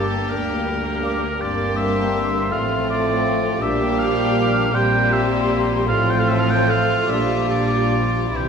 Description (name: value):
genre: classical, slow romantic movement for symphony orchestra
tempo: 44-56 BPM (dotted quarters)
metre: 6/8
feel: rubato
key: F major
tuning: A4 = 440 Hz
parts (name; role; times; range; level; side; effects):
- warm symphonic violin section; melody; 0.0-8.5 s; E4 to G4; -28 LUFS; left 6 dB; none
- clear oboe; second line; 0.0-8.5 s; G4 to G5; -24 LUFS; right 1 dB; none
- mellow silver concert flute; second line; 0.0-8.5 s; C6 to D6; -29 LUFS; left 4 dB; none
- warm clarinet; second line; 0.0-8.5 s; G4 to A4; -31 LUFS; right 2 dB; none
- warm symphonic violin section; second line; 0.0-8.5 s; G3 to E4; -30 LUFS; left 6 dB; none
- dark symphonic viola section; accompaniment; 0.0-8.5 s; G3 to Bb3; -27 LUFS; right 1 dB; none
- mellow bassoon; accompaniment; 0.0-8.5 s; E3 to Bb3; -27 LUFS; right 4 dB; none
- mellow French horn section; sustained chords; 0.0-8.5 s; G3 to D4; -28 LUFS; left 4 dB; none
- mellow trombone section; sustained chords; 0.0-8.5 s; G2 to G3; -30 LUFS; right 1 dB; none
- dark symphonic double bass section; bass; 0.0-8.5 s; G1 to D2; -26 LUFS; right 2 dB; none
- warm symphonic cello section; bass; 0.0-8.5 s; D2 to C3; -27 LUFS; right 3 dB; none
- timpani; percussion; 8.3-8.5 s; C3; -31 LUFS; equal; none
room: wet scoring stage reverb, RT60 1.5 s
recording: minimal, uncompressed stereo recording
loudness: -17 LUFS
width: side -6 dB against mid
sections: 0.0-8.5 A section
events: none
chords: 0.0 Gm; 1.4 C7/G; 2.5 F/A; 3.6 Bb6; 4.7 C7/Bb; 5.9 F/A; 7.1 Gm7/Bb